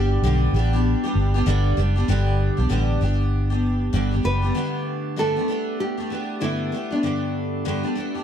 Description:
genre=acoustic pop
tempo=97 BPM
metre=4/4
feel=swing 60% on 16ths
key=G major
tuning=A4 = 440 Hz
part: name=nylon-string guitar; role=melody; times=0.0-7.8 s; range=D4 to B4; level=-27 LUFS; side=equal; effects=plate reverb
part: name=picked steel-string acoustic guitar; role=accompaniment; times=0.0-8.2 s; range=G2 to G4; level=-24 LUFS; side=equal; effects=double-tracked left and right
part: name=vintage muted fingered electric bass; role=bass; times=0.0-4.5 s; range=F#1 to B1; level=-20 LUFS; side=equal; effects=none
room=light reverb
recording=dark, warm production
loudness=-20 LUFS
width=side -9 dB against mid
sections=0.0-2.1 A section; 2.1-4.6 B section; 4.6-8.2 C section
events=none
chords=0.0 G; 4.6 Gadd9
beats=0.22 0.84 1.46 | 2.08 2.70 3.32 3.94 | 4.56 5.18 5.80 6.42 | 7.04 7.66

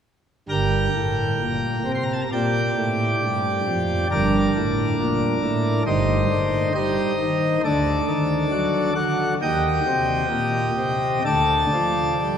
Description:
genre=classical, chorale-style piece for pipe organ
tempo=67 BPM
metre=4/4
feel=rubato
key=G minor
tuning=A4 = 439 Hz
part: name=pipe organ, plenum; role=solo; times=0.5-12.4 s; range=G1 to C6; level=-19 LUFS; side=equal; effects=none
room=wet cathedral reverb, RT60 5.3 s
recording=recorded in a church or concert hall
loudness=-19 LUFS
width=side -8 dB against mid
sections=0.5-12.4 A section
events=none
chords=0.5 Gm; 5.9 Cm/G; 7.6 D; 9.4 Eb; 11.3 Dsus4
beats=| 0.50 1.41 2.32 3.22 | 4.11 4.98 5.86 6.75 | 7.63 8.51 9.41 10.31 | 11.25 12.21

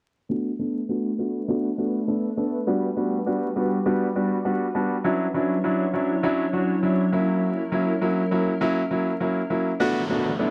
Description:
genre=pop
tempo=101 BPM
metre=4/4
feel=straight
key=unclear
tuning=A4 = 438 Hz
part: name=clear baby grand piano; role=accompaniment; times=0.3-10.5 s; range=F#3 to A5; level=-25 LUFS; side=equal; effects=low-pass filter
part: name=glassy FM pad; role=sustained chords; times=0.9-9.8 s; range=F#3 to C#5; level=-30 LUFS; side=equal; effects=ensemble chorus, built-in reverb, low-pass filter
part: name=downlifter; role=sound effects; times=9.8-10.5 s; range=none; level=-32 LUFS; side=equal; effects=none
room=light reverb, small room ambience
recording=dry, close 1970s-style studio recording, vinyl crackle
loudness=-24 LUFS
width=mono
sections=0.3-9.8 A section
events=filter sweep 0.3-9.8; grand piano fill 3.9-5.0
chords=0.3 Bm7; 2.7 Gmaj7; 5.0 Dmaj9; 7.1 F#7; 9.8 Bm7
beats=| 0.29 0.89 1.48 2.08 | 2.67 3.26 3.86 4.45 | 5.05 5.64 6.24 6.83 | 7.42 8.02 8.61 9.21 | 9.80 10.39

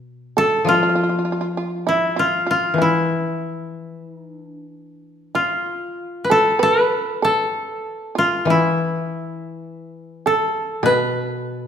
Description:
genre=japanese traditional, Japanese chamber music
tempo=45-51 BPM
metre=4/4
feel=rubato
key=unclear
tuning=A4 = 440 Hz
part: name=koto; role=accompaniment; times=0.0-11.7 s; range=B2 to F3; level=-23 LUFS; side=left 4 dB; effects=none
part: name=koto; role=melody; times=0.4-11.7 s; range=E4 to B4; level=-19 LUFS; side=left 1 dB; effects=none
part: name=shamisen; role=second line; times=0.4-11.7 s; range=E4 to B4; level=-24 LUFS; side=right 4 dB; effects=none
room=wet recital hall reverb, RT60 1.6 s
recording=recorded in a church or concert hall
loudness=-17 LUFS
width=side -8 dB against mid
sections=0.0-6.0 A section; 6.0-11.7 B section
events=none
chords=none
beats=| 0.97 2.16 3.40 4.69 | 5.98 7.23 8.47 9.67 | 10.85

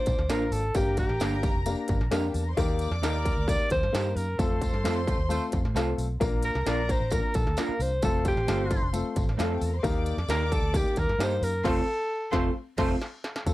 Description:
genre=uptempo 1960s-style soul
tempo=132 BPM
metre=4/4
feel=straight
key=unclear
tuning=A4 = 440 Hz
part: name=breathy alto saxophone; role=melody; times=0.0-12.5 s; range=G4 to D5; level=-30 LUFS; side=equal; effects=none
part: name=warm studio string section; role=second line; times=0.0-12.9 s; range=D4 to D6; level=-38 LUFS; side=left 1 dB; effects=none
part: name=warm upright piano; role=accompaniment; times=0.0-13.5 s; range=A3 to C5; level=-32 LUFS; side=left 4 dB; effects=none
part: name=vintage muted fingered electric bass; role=bass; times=0.1-13.5 s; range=F1 to A2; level=-30 LUFS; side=equal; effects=none
part: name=industrial drum kit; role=drums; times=0.1-13.5 s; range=crash cymbal, hi-hat, kick drum, snare drum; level=-29 LUFS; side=equal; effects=distortion
part: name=tambourine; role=percussion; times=0.1-13.5 s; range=none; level=-46 LUFS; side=right 4 dB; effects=none
part: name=electric guitar through a small old amp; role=stabs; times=0.3-12.9 s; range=A3 to Bb4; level=-32 LUFS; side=right 6 dB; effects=none
part: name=clear horn section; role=second line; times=5.1-5.4, 11.6-12.9 s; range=A3 to C5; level=-36 LUFS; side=right 2 dB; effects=tube saturation, slapback echo
room=little or no reverb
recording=none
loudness=-24 LUFS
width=side -16 dB against mid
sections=0.0-13.5 A section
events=band accent 4.4-6.2, 11.7-13.5; drum fill 13.0-13.5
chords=0.0 Bb; 0.7 Gm; 2.6 Eb; 4.4 F; 6.2 Bb; 8.0 F; 9.8 Eb; 11.7 F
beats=0.29 | 0.75 1.20 1.66 2.11 | 2.57 3.02 3.48 3.93 | 4.39 4.84 5.30 5.75 | 6.21 6.66 7.12 7.57 | 8.03 8.48 8.93 9.39 | 9.84 10.29 10.75 11.20 | 11.65 12.11 12.56 13.01 | 13.47

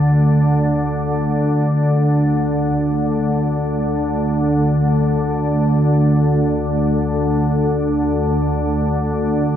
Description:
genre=ambient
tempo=free time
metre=none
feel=none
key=unclear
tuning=A4 = 441 Hz
part: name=organ-like drone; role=solo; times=0.0-9.6 s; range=D2 to D3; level=-15 LUFS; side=equal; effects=ensemble chorus, built-in reverb, diffuse ambient delay
room=wet cathedral reverb, RT60 6.9 s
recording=in a vast, echoing space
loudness=-15 LUFS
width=side -10 dB against mid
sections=0.0-2.7 A section; 2.7-9.6 B section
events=none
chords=none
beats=free time

